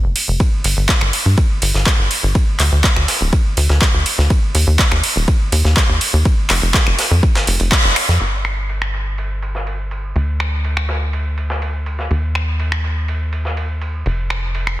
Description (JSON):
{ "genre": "progressive house", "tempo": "123 BPM", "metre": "4/4", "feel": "straight", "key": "unclear", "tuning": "A4 = 439 Hz", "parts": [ { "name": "tight sequencer bass", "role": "bass", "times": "0.0-14.8 s", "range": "D1 to G2", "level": "-17 LUFS", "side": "equal", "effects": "sidechain pumping" }, { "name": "deep house drum kit", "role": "drums", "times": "0.2-14.8 s", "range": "finger snaps, handclaps, hi-hat", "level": "-19 LUFS", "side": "equal", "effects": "overdrive, low-pass filter on hats, studio reverb, low-pass filter on snare" }, { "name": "breakbeat sampler-style drum kit", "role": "drums", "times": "0.4-14.7 s", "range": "ride cymbal, snare drum", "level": "-27 LUFS", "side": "right 1 dB", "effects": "overdrive, sidechain pumping on cymbals, high-pass filter on cymbals, low-pass filter on cymbals, studio reverb, high-pass filter on snare, low-pass filter on snare, high-pass filter on room, low-pass filter on room" }, { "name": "electronic kick drum", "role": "drums", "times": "0.4-7.8 s", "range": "none", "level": "-15 LUFS", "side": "equal", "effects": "overdrive, studio reverb" } ], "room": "light reverb, digital ambience", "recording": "dense, heavily limited modern master", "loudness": "-14 LUFS", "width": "side -15 dB against mid", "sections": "0.0-8.2 A section; 8.2-14.8 B section", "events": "band accent 7.7", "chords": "none", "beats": "| 0.40 0.89 1.38 1.86 | 2.35 2.84 3.33 3.82 | 4.30 4.79 5.28 5.77 | 6.25 6.74 7.23 7.72 | 8.21 8.69 9.18 9.67 | 10.16 10.64 11.13 11.62 | 12.11 12.60 13.08 13.57 | 14.06 14.55" }